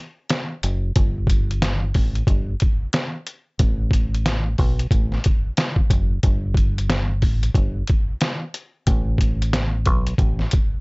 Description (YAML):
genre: hip hop, boom-bap hip-hop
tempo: 91 BPM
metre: 4/4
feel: swing 62% on 16ths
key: unclear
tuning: A4 = 436 Hz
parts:
  - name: trip hop sampler-style drum kit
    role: drums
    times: 0.3-10.7 s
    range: hi-hat, kick drum, snare drum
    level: -19 LUFS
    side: equal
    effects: none
  - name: deep dub fingered electric bass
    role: bass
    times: 0.6-10.5 s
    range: F#1 to B1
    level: -22 LUFS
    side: equal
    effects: none
room: little or no reverb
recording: nothing above 7.8 kHz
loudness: -18 LUFS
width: side -33 dB against mid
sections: 0.0-10.8 A section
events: break 0.0-1.0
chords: none